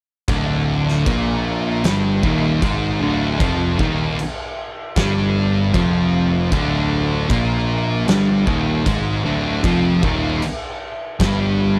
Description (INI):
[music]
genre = stoner and doom metal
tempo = 77 BPM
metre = 4/4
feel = straight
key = D minor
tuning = A4 = 441 Hz
[part]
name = distorted electric guitar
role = riff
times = 0.3-11.8 s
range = D2 to Bb3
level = -27 LUFS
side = equal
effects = distortion
[part]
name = thick fuzz guitar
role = riff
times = 0.3-11.8 s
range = D2 to Bb3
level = -25 LUFS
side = equal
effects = distortion
[part]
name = thick fuzz guitar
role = riff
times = 0.3-11.8 s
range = D2 to Bb3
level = -25 LUFS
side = equal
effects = distortion
[part]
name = fuzz picked electric bass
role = bass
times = 0.3-11.8 s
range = D1 to Bb1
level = -25 LUFS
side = equal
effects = overdrive
[part]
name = oversized low-tuned drum kit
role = drums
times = 0.3-11.4 s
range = crash cymbal, kick drum, snare drum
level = -26 LUFS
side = equal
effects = none
[sound]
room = little or no reverb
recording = none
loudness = -19 LUFS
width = mono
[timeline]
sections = 0.3-11.8 A section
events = none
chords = 0.3 Dm